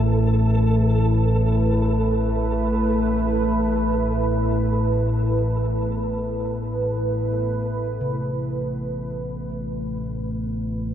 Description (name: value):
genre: dark ambient drone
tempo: free time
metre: none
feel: none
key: A minor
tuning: A4 = 442 Hz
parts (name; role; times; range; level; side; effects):
- deep dark ambient pad; sustained chords; 0.0-10.9 s; A3 to B4; -26 LUFS; right 2 dB; chorus, built-in reverb
- analog drone; drone; 0.0-10.9 s; A1 to A2; -22 LUFS; left 1 dB; chorus
- flickering grainy texture; texture; 0.0-8.0 s; A4; -32 LUFS; right 2 dB; built-in reverb
- gamelan-type bossed gongs; arpeggios; 8.0-10.9 s; C3; -31 LUFS; equal; none
room: moderate huge ambient reverb, RT60 9.4 s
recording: dark, warm production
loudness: -20 LUFS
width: side -10 dB against mid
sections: 0.0-8.0 A section; 8.0-10.9 B section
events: none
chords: 0.0 Asus2; 8.0 Amadd9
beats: free time